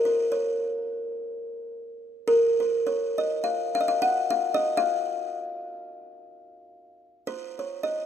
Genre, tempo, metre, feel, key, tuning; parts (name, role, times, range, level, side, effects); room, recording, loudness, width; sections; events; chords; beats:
balkan folk; 215 BPM (eighths); 9/8; straight; A4 = 440 Hz
buzzing kalimba; solo; 0.1-8.1 s; Bb4 to Gb5; -24 LUFS; equal
moderate lush hall reverb, RT60 2.8 s; rough home demo mix; -24 LUFS; side -9 dB against mid
0.0-7.3 A section
0.01 0.29 0.57 0.85 1.13 1.41 1.69 1.97 | 2.25 2.53 2.81 3.09 3.37 3.65 3.93 4.21 4.49 | 4.76 5.04 5.32 5.60 5.88 6.15 6.43 6.71 6.98 | 7.26 7.54 7.81